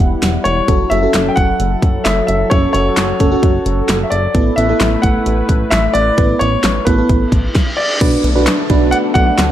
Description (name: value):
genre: synth-pop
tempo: 131 BPM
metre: 4/4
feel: straight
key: B minor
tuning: A4 = 440 Hz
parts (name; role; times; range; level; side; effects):
- FM electric piano with soft pad layer; accompaniment; 0.0-9.3 s; B3 to B4; -18 LUFS; right 2 dB; chorus
- warm analog pad; sustained chords; 0.0-9.5 s; F#3 to F#5; -21 LUFS; left 1 dB; chorus
- chorused synth bass; bass; 0.0-9.5 s; E1 to D2; -18 LUFS; equal; none
- pop drum kit; drums; 0.0-9.5 s; crash cymbal, handclaps, hi-hat, kick drum, snare drum; -16 LUFS; equal; none
- clear grand piano; melody; 0.4-9.5 s; B4 to G5; -18 LUFS; left 1 dB; slapback echo
- reverse cymbal and downlifter; sound effects; 7.3-9.5 s; none; -23 LUFS; equal; none
room: light reverb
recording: dark, warm production, lossy compression artefacts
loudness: -11 LUFS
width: side -12 dB against mid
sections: 0.0-8.0 A section; 8.0-9.5 B section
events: reverse cymbal 7.3-8.0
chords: 0.0 Emadd9; 0.7 F#m7; 4.3 Asus2; 8.0 Bm7